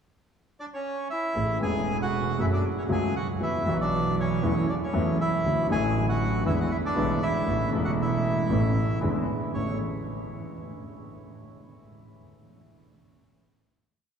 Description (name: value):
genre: tango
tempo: 117 BPM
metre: 4/4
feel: rubato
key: A major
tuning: A4 = 441 Hz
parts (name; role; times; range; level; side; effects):
- bandoneon; melody; 0.6-9.8 s; C#4 to G#5; -30 LUFS; right 1 dB; none
- warm grand piano; accompaniment; 1.3-9.8 s; E1 to G#4; -27 LUFS; left 1 dB; none
- warm double bass; bass; 1.3-9.8 s; E1 to E2; -30 LUFS; right 3 dB; none
room: wet cathedral reverb, RT60 6.2 s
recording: recorded in a church or concert hall, small room ambience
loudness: -24 LUFS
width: side -7 dB against mid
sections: 0.0-1.3 pickup bar; 1.3-9.5 A section; 9.5-11.6 final chord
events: none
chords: 0.0 C#m; 1.3 Amaj7; 2.4 F#m; 3.4 Esus2; 4.4 A6/E; 5.4 D; 6.5 E7; 7.5 Aadd9; 9.0 E7; 9.5 Aadd9